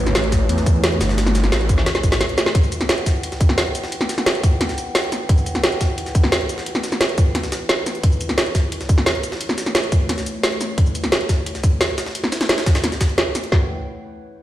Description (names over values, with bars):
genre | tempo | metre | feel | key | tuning
dark technical drum and bass | 175 BPM | 4/4 | straight | E dorian | A4 = 439 Hz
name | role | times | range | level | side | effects
dark analog pad | sustained chords | 0.0-13.7 s | A3 to G5 | -29 LUFS | equal | chorus, sidechain pumping
wide detuned saw bass | bass | 0.0-2.2 s | G1 to E2 | -19 LUFS | equal | chorus, overdrive
drum and bass drum kit | drums | 0.1-13.4 s | cabasa, hi-hat, snare drum | -20 LUFS | equal | none
jungle sampler-style drum kit | drums | 0.1-13.5 s | hi-hat, snare drum | -28 LUFS | equal | high-pass filter on hats, high-pass filter on snare
drum and bass drum kit | drums | 0.3-13.6 s | kick drum, snare drum | -16 LUFS | equal | none
room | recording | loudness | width
light reverb, digital ambience | played on a big sound system in a bare room, stone room reverb | -16 LUFS | side -14 dB against mid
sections
0.0-13.5 A section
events
drum fill 1.9-2.5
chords
0.0 A; 2.5 Emadd9; 8.0 A; 13.5 Emadd9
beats
0.15 0.49 0.83 | 1.18 1.52 1.86 2.21 | 2.55 2.89 3.23 3.58 | 3.92 4.26 4.61 4.95 | 5.29 5.63 5.98 6.32 | 6.66 7.01 7.35 7.69 | 8.04 8.38 8.72 9.06 | 9.41 9.75 10.09 10.44 | 10.78 11.12 11.46 11.81 | 12.15 12.49 12.84 13.18 | 13.52